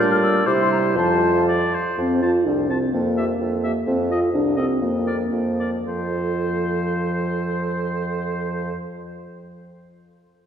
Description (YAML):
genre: quick classical-period movement for wind quintet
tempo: 106-129 BPM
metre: 2/4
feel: rubato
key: F major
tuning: A4 = 440 Hz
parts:
  - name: mellow hollow silver concert flute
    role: melody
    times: 0.0-1.5 s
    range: A5 to F6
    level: -25 LUFS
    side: left 6 dB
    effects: none
  - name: warm oboe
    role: second line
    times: 0.0-8.7 s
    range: C5 to A5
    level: -28 LUFS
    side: left 2 dB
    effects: none
  - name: dark French horn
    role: accompaniment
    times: 0.0-8.7 s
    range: F3 to F4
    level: -23 LUFS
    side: equal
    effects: none
  - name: mellow clarinet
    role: accompaniment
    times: 0.0-8.7 s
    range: D4 to Bb4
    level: -29 LUFS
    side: right 4 dB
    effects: none
  - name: mellow bassoon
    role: bass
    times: 0.0-8.7 s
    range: C2 to C3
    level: -25 LUFS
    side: right 2 dB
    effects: none
room: wet church reverb, RT60 3.1 s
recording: recorded in a church or concert hall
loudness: -19 LUFS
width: side -8 dB against mid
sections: 0.0-2.0 A section; 2.0-5.9 B section; 5.9-8.0 C section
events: slowing down 3.4-5.9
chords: 0.0 Gm/Bb; 0.5 C; 1.0 F; 2.0 F5; 2.9 Fsus24; 3.9 F; 4.8 Bb5/F; 5.9 F